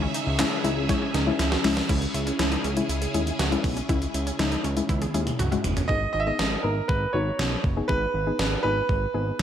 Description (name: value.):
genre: synth-pop.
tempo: 120 BPM.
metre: 4/4.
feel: straight.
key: unclear.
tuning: A4 = 440 Hz.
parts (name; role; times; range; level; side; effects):
clear concert grand piano; melody; 0.0-1.3, 5.9-9.4 s; A#4 to E5; -28 LUFS; right 3 dB; tape echo.
soft round pluck; accompaniment; 0.0-9.4 s; D#3 to A#4; -29 LUFS; left 4 dB; chorus.
phased string machine; sustained chords; 0.0-5.9 s; C#3 to E5; -32 LUFS; equal; ensemble chorus, phaser.
analog pluck; arpeggios; 0.0-5.9 s; C#4 to G#4; -34 LUFS; right 3 dB; chorus, tape echo.
fat analog bass; bass; 0.0-9.4 s; F#1 to D#2; -28 LUFS; equal; none.
gated 80s digital drum machine; drums; 0.1-9.4 s; crash cymbal, handclaps, hi-hat, kick drum, snare drum, toms; -27 LUFS; equal; gated reverb, gated reverb snare, overdrive.
room: moderate scoring stage reverb, RT60 2.0 s, digital ambience.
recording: big arena sound.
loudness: -22 LUFS.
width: side -9 dB against mid.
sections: 0.0-1.9 A section; 1.9-5.9 B section; 5.9-9.4 C section.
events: drum fill 0.9-1.9, 4.9-5.9.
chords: 0.0 C#m; 5.9 G#m.